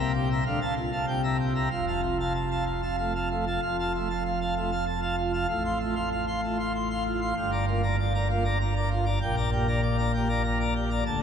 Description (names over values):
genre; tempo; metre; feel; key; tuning
classical, organ toccata; 97 BPM; 3/4; straight; F major; A4 = 439 Hz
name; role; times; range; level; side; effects
pipe organ, plenum; solo; 0.0-11.2 s; D1 to C6; -25 LUFS; equal; none
room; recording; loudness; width
wet cathedral reverb, RT60 5.9 s; minimal, uncompressed stereo recording; -25 LUFS; side -8 dB against mid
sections
0.0-3.6 A section; 3.6-11.2 B section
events
none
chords
0.4 Dm; 1.1 C7; 1.7 F; 5.5 F/A; 7.4 Gm7; 9.2 Gm/Bb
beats
0.45 1.07 | 1.70 2.34 2.98 | 3.62 4.25 4.87 | 5.50 6.12 6.74 | 7.36 7.98 8.60 | 9.22 9.83 10.45 | 11.06